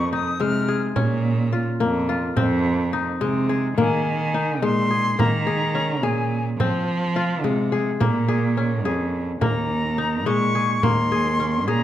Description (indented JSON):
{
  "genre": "contemporary instrumental, chamber music in an uneven meter",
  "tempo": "213 BPM (eighths)",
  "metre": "5/8",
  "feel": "straight",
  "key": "unclear",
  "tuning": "A4 = 440 Hz",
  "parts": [
    { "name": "silver concert flute", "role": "melody", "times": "0.0-0.8, 3.8-6.5, 9.4-11.8 s", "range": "Ab5 to F6", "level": "-25 LUFS", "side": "left 1 dB", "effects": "none" },
    { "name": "kora", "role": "arpeggios", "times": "0.0-11.8 s", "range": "Ab3 to Ab4", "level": "-24 LUFS", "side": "left 5 dB", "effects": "none" },
    { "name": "rich cello", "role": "bass", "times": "0.0-11.8 s", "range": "Eb2 to F3", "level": "-23 LUFS", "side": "right 3 dB", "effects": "none" },
    { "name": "frame drum", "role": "percussion", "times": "0.1-11.8 s", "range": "none", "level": "-26 LUFS", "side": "right 2 dB", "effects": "none" }
  ],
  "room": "moderate recital hall reverb, RT60 1.6 s",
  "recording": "none",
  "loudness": "-19 LUFS",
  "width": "side -12 dB against mid",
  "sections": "0.0-3.8 A section; 3.8-11.8 B section",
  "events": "none",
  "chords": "0.0 Fm7; 1.0 Bbm; 2.4 Fm7; 3.8 Eb7sus4; 6.6 Fm; 8.0 Bbm7; 9.4 Eb7sus4"
}